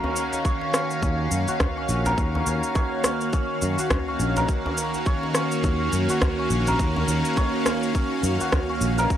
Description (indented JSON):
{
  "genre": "organic downtempo",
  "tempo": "104 BPM",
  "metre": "4/4",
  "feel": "swing 58% on 16ths",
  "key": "Eb minor",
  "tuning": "A4 = 440 Hz",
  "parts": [
    { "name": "bowed-like drone", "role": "sustained chords", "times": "0.0-9.2 s", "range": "Eb3 to F5", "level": "-26 LUFS", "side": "equal", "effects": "built-in reverb, phaser, sidechain pumping" },
    { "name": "santur", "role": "arpeggios", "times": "0.0-9.2 s", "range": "Db4 to Db5", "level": "-28 LUFS", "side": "right 1 dB", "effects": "tape echo" },
    { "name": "djembe", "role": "percussion", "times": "0.0-9.1 s", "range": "none", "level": "-32 LUFS", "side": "equal", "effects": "none" },
    { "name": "electronic shaker and rim click", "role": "drums", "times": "0.2-9.2 s", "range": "none", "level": "-27 LUFS", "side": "equal", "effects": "overdrive" },
    { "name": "electronic kick drum", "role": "drums", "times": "0.4-9.2 s", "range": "none", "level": "-24 LUFS", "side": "equal", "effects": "overdrive" },
    { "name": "sustaining fretless electric bass", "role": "bass", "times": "1.0-9.1 s", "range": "Bb1 to Gb2", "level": "-24 LUFS", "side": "equal", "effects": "transformer saturation" }
  ],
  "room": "light reverb, digital ambience",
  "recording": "dry, gritty hardware recording, transformer saturation",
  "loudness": "-21 LUFS",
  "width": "side -10 dB against mid",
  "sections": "0.0-9.2 A section",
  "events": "none",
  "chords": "0.0 Ebm7"
}